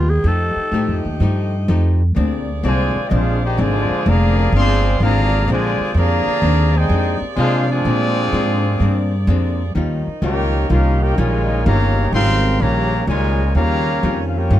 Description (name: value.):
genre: jazz.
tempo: 126 BPM.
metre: 4/4.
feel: swing 66% on 8ths.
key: unclear.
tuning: A4 = 438 Hz.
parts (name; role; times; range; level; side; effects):
growling clarinet; melody; 0.0-1.0 s; F4 to A4; -21 LUFS; equal; none.
archtop guitar, miked and amplified; accompaniment; 0.0-14.6 s; Bb2 to Ab4; -25 LUFS; left 4 dB; none.
mellow saxophone section; sustained chords; 0.0-14.6 s; C3 to D5; -28 LUFS; equal; none.
upright bass; bass; 0.0-14.6 s; F1 to C3; -17 LUFS; equal; none.
bright trombone section; second line; 2.6-14.6 s; Bb2 to Ab4; -24 LUFS; equal; none.
warm trumpet section; melody; 2.7-14.6 s; C4 to C6; -21 LUFS; equal; none.
room: little or no reverb.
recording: close, detailed microphones.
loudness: -15 LUFS.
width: side -12 dB against mid.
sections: 0.0-2.2 A section; 2.2-14.6 B section.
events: clarinet solo 0.0-2.2.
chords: 0.2 F9; 2.2 Bb9; 9.7 Eb9.